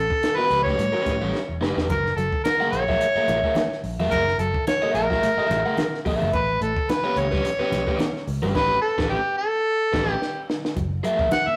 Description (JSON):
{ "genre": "funk", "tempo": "108 BPM", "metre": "4/4", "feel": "swing 56% on 16ths", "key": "unclear", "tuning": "A4 = 439 Hz", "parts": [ { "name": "mellow harmonica", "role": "melody", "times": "0.0-11.6 s", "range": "G4 to F#5", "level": "-25 LUFS", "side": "equal", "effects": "none" }, { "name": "electric guitar at the edge of break-up", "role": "riff", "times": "0.0-11.5 s", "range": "F#3 to B3", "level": "-36 LUFS", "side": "equal", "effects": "phaser" }, { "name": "vintage muted fingered electric bass", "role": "bass", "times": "0.0-11.5 s", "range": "E1 to A2", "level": "-32 LUFS", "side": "equal", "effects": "none" }, { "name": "compact cocktail drum kit", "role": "drums", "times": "0.1-11.5 s", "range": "crash cymbal, hi-hat, kick drum, snare drum", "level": "-31 LUFS", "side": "equal", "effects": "none" }, { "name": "overdriven electric guitar", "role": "accompaniment", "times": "0.4-11.3 s", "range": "C#4 to F#5", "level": "-28 LUFS", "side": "equal", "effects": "spring reverb" }, { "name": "congas", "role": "percussion", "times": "1.9-11.5 s", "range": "none", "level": "-36 LUFS", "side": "equal", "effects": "none" } ], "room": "moderate stone room reverb, RT60 1.0 s", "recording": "rough rehearsal-room recording, warm saturation", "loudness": "-23 LUFS", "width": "mono", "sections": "0.0-10.8 A section", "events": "drum fill 1.3-1.9, 10.2-10.8; band accent 8.6-10.8", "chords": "0.0 A9; 1.9 F#9; 6.3 A9; 10.8 F#9", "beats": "0.23 0.78 1.34 | 1.89 2.45 3.00 3.56 | 4.12 4.67 5.22 5.78 | 6.33 6.89 7.44 8.00 | 8.55 9.10 9.66 10.21 | 10.77 11.32" }